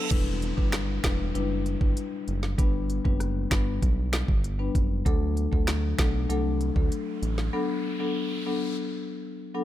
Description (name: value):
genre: dancehall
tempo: 97 BPM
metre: 4/4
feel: straight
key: unclear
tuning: A4 = 440 Hz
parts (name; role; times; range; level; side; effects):
- reverse cymbal, downlifter and riser; sound effects; 0.0-8.8 s; none; -39 LUFS; right 2 dB; none
- marimba with medium mallets; accompaniment; 0.1-9.6 s; F#3 to B4; -30 LUFS; left 4 dB; sidechain pumping
- round analog bass; bass; 0.1-7.5 s; E1 to D2; -28 LUFS; right 1 dB; none
- island pop drum kit; drums; 0.1-7.5 s; crash cymbal, finger snaps, hi-hat, kick drum, rim click, snare drum; -26 LUFS; right 1 dB; none
room: digital ambience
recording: none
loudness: -24 LUFS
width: side -13 dB against mid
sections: 0.1-9.6 A section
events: riser 6.2-9.6; break 7.5-9.6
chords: 0.1 Em7; 2.6 G; 5.1 D; 7.5 Bm7